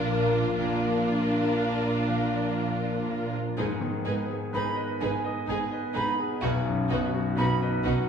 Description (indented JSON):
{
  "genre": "cinematic, emotional film score for orchestra",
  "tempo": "39-42 BPM (dotted quarters)",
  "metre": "6/8",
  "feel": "rubato",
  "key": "unclear",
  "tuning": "A4 = 440 Hz",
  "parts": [
    { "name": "dark studio violin section", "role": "melody", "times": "0.0-7.9 s", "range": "Bb4 to Cb5", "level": "-33 LUFS", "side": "left 3 dB", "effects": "none" },
    { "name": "rich studio violin section", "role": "second line", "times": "0.0-7.9 s", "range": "F4 to Ab4", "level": "-36 LUFS", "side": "left 1 dB", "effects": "none" },
    { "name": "bright concert grand piano", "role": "accompaniment", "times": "0.0-8.1 s", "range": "B1 to Ab5", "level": "-30 LUFS", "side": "equal", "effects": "none" },
    { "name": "rich studio viola section", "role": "accompaniment", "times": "0.0-7.9 s", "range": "D4 to Eb4", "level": "-34 LUFS", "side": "right 1 dB", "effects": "none" },
    { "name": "concert harp", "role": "arpeggios", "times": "0.0-8.1 s", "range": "Ab2 to Eb6", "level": "-34 LUFS", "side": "left 5 dB", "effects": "none" },
    { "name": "warm studio cello section", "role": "bass", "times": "0.0-7.9 s", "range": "Ab2 to B2", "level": "-36 LUFS", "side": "right 4 dB", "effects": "none" },
    { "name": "warm studio double bass section", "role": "bass", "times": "0.0-7.9 s", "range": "Ab1 to B1", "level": "-34 LUFS", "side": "right 5 dB", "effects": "none" },
    { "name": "dark French horn section", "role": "sustained chords", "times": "3.6-8.1 s", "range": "Cb4 to Eb4", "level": "-34 LUFS", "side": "equal", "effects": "none" },
    { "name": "bright silver concert flute", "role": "second line", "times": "4.5-7.6 s", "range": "B5 to Cb6", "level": "-32 LUFS", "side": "right 2 dB", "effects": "none" },
    { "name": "warm clarinet", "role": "second line", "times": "4.5-7.5 s", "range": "Eb4", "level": "-38 LUFS", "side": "right 1 dB", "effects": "none" }
  ],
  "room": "wet recital hall reverb, RT60 1.3 s",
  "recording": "small room ambience",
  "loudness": "-25 LUFS",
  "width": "side -7 dB against mid",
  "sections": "0.0-3.6 A section; 3.6-8.1 B section",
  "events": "none",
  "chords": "0.0 Bb; 3.6 Abm; 6.4 B",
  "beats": "| 0.58 2.08 | 3.58 5.02 | 6.44 7.86"
}